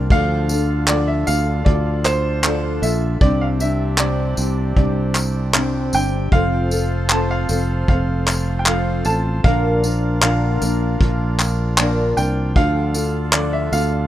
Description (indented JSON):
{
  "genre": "acoustic pop",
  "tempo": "77 BPM",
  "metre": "4/4",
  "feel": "straight",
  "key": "F major",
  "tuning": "A4 = 440 Hz",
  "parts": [
    { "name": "nylon-string guitar", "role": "accompaniment", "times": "0.0-14.1 s", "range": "Bb2 to Bb4", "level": "-23 LUFS", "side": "left 1 dB", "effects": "double-tracked left and right" },
    { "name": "hand-pumped harmonium", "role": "sustained chords", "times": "0.0-14.1 s", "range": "C3 to C5", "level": "-30 LUFS", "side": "right 1 dB", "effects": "none" },
    { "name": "fingered electric bass", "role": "bass", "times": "0.0-14.1 s", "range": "F1 to D2", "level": "-20 LUFS", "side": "equal", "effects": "none" },
    { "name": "clear upright piano", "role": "melody", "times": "0.1-14.1 s", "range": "C5 to A5", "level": "-24 LUFS", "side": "right 2 dB", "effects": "tape echo" },
    { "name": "vintage brush drum kit", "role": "drums", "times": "0.1-13.9 s", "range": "handclaps, kick drum, tambourine", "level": "-18 LUFS", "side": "equal", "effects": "none" }
  ],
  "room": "small room ambience",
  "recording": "rough home demo mix",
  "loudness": "-16 LUFS",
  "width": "side -13 dB against mid",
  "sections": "0.0-14.1 A section",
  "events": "none",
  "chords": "0.1 Dm; 3.2 Csus2; 6.3 F; 9.4 Bb; 12.6 Dm",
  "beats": "| 0.10 0.88 1.66 2.44 | 3.21 3.99 4.77 5.55 | 6.33 7.11 7.89 8.67 | 9.45 10.22 11.00 11.78 | 12.56 13.34"
}